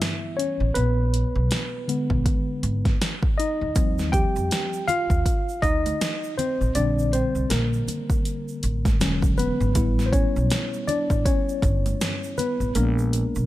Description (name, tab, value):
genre	hip hop, jazz-hop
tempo	80 BPM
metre	4/4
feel	swing 60% on 16ths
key	unclear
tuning	A4 = 438 Hz
part	tine electric piano	accompaniment	0.0-13.5 s	D3 to G5	-25 LUFS	left 1 dB	medium stereo tremolo
part	deep house drum kit	drums	0.0-13.3 s	hi-hat, kick drum, snare drum	-24 LUFS	equal	none
part	upright bass	bass	0.6-13.5 s	E1 to F2	-24 LUFS	equal	none
part	tube shaker and congas	percussion	3.8-13.5 s	none	-37 LUFS	right 7 dB	none
room	little or no reverb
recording	none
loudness	-21 LUFS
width	side -15 dB against mid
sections	0.0-13.5 A section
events	tine electric piano solo 0.0-13.5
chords	0.0 A7; 0.8 Bb7b9; 3.8 Eb69; 6.8 Bb69; 9.0 E13; 9.8 A7; 12.8 Bb7b9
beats	0.00 | 0.75 1.50 2.25 3.00 | 3.75 4.50 5.25 6.00 | 6.75 7.50 8.25 9.00 | 9.75 10.50 11.25 12.00 | 12.75